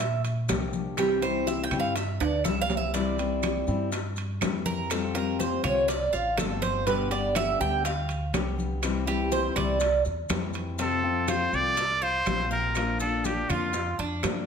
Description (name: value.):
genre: latin, Cuban son and guajira.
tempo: 122 BPM.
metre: 4/4.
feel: straight.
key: F major.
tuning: A4 = 440 Hz.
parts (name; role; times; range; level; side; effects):
fingerpicked steel-string acoustic guitar; accompaniment; 0.0-14.5 s; B2 to G4; -32 LUFS; left 7 dB; none.
Cuban tres; arpeggios; 0.0-14.5 s; C4 to G5; -29 LUFS; right 4 dB; none.
upright bass; bass; 0.0-14.5 s; G1 to Bb2; -32 LUFS; equal; none.
bongos; percussion; 0.0-14.5 s; none; -37 LUFS; left 6 dB; none.
congas; percussion; 0.0-14.5 s; none; -37 LUFS; left 3 dB; none.
maracas; percussion; 0.0-14.5 s; none; -42 LUFS; left 5 dB; none.
timbales; percussion; 0.0-14.5 s; none; -36 LUFS; right 6 dB; none.
claves; percussion; 0.5-14.5 s; none; -41 LUFS; right 7 dB; none.
trumpet with straight mute; melody; 10.8-14.0 s; F4 to D5; -27 LUFS; right 1 dB; none.
room: moderate large studio reverb, RT60 1.3 s.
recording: none.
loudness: -24 LUFS.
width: side -6 dB against mid.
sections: 0.0-10.8 A section; 10.8-14.5 B section.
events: Cuban tres solo 0.0-10.8; drum fill 2.2-2.9.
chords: 0.0 Gm7; 4.9 Fadd9; 6.9 G; 8.8 C; 10.8 F; 12.8 Bb.